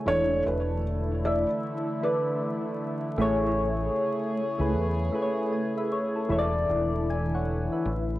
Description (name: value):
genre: lo-fi hip hop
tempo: 77 BPM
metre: 4/4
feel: swing 62% on 16ths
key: unclear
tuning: A4 = 440 Hz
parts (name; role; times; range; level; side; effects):
- soft electric-piano-like synth keys; accompaniment; 0.0-8.2 s; E3 to G#5; -28 LUFS; left 1 dB; chorus, phaser, cassette tape
- warbly tape-like pad; sustained chords; 0.0-8.2 s; C#3 to G#4; -34 LUFS; equal; chorus, built-in reverb, phaser, cassette tape
- felt-muted upright piano; melody; 0.1-3.1 s; B4 to D5; -29 LUFS; right 1 dB; cassette tape, tape echo
- deep dub fingered electric bass; bass; 0.1-8.2 s; E1 to E2; -30 LUFS; equal; none
room: light reverb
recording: home recording on cassette, vinyl crackle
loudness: -25 LUFS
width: side -16 dB against mid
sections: 0.0-8.2 A section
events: none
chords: 0.1 E7sus4; 3.2 Amaj7; 6.3 E7sus4